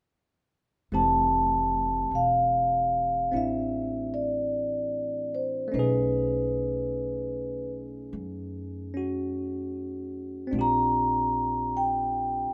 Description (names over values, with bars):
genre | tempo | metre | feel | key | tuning
jazz ballad | 50 BPM | 4/4 | swing 67% on 8ths | unclear | A4 = 442 Hz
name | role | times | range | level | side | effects
vibraphone with soft mallets | melody | 0.9-12.5 s | B4 to Bb5 | -28 LUFS | equal | none
barky tine electric piano | accompaniment | 0.9-12.5 s | E3 to G#4 | -35 LUFS | equal | none
upright bass | bass | 0.9-12.5 s | E1 to F#2 | -38 LUFS | equal | none
room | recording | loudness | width
moderate plate reverb, RT60 3.0 s | none | -27 LUFS | mono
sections
0.9-12.5 A section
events
none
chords
0.9 Fmaj7; 5.7 B13; 10.5 Bb69